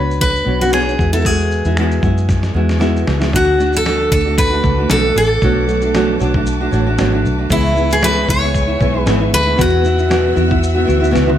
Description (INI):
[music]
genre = acoustic pop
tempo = 115 BPM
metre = 4/4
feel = swing 55% on 16ths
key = unclear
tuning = A4 = 441 Hz
[part]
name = picked steel-string acoustic guitar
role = melody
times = 0.0-11.1 s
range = E4 to C#5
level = -17 LUFS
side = left 1 dB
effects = slapback echo, plate reverb
[part]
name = flamenco guitar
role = accompaniment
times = 0.0-11.4 s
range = E2 to C#5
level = -18 LUFS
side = right 1 dB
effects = none
[part]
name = vintage muted fingered electric bass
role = bass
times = 0.0-11.4 s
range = G#1 to F#2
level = -17 LUFS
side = equal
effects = none
[part]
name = dusty soul sampler-style drum kit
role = drums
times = 0.1-11.4 s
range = finger snaps, kick drum, shaker, snare drum, toms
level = -21 LUFS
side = equal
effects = none
[part]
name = warm studio string section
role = sustained chords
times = 3.3-11.4 s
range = A4 to E6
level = -29 LUFS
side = left 3 dB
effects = none
[sound]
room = light reverb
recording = none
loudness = -12 LUFS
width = side -10 dB against mid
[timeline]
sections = 0.0-3.3 A section; 3.3-11.4 B section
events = drum fill 2.3-3.3, 11.2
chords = 0.0 Bmadd9; 1.0 Eadd9; 3.3 D; 5.4 Bm7; 7.5 C#m7; 9.6 Esus2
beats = 0.20 0.73 | 1.25 1.77 2.29 2.81 | 3.34 3.86 4.38 4.90 | 5.42 5.94 6.46 6.99 | 7.51 8.03 8.55 9.07 | 9.59 10.11 10.63 11.15